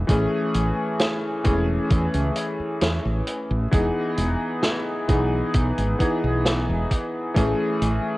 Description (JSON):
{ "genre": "vaporwave", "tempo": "66 BPM", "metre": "4/4", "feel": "straight", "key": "A lydian", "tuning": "A4 = 441 Hz", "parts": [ { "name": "warm electric grand piano", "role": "accompaniment", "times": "0.0-8.2 s", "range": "E3 to G#4", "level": "-24 LUFS", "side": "left 1 dB", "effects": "analog chorus, tape echo" }, { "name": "woody fretless electric bass", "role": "bass", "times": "0.0-8.0 s", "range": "E1 to E2", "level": "-24 LUFS", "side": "equal", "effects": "tube saturation" }, { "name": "electronic kick drum", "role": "drums", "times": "0.1-7.6 s", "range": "none", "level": "-20 LUFS", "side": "equal", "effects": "overdrive" }, { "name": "vintage drum kit", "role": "drums", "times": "0.1-8.0 s", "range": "hi-hat, snare drum", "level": "-27 LUFS", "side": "equal", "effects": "none" } ], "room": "light reverb", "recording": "worn, warbling old tape, cassette tape, warbly pitch drift", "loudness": "-20 LUFS", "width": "side -18 dB against mid", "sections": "0.0-8.2 A section", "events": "none", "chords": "0.1 Amaj7; 3.7 Emaj7; 7.4 Amaj7", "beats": "| 0.09 1.00 1.91 2.82 | 3.73 4.64 5.54 6.45 | 7.36" }